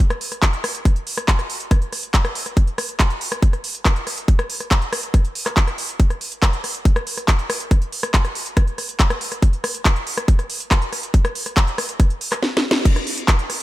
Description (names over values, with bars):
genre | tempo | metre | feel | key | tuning
trance | 140 BPM | 4/4 | straight | none | none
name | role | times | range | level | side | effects
electronic kick drum | drums | 0.0-13.4 s | none | -15 LUFS | equal | none
techno drum kit | drums | 0.0-13.6 s | crash cymbal, handclaps, hi-hat, rim click, snare drum | -22 LUFS | equal | none
room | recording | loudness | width
little or no reverb | none | -17 LUFS | side -16 dB against mid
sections
0.0-12.9 A section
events
drum fill 12.4-12.9; band accent 12.7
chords
none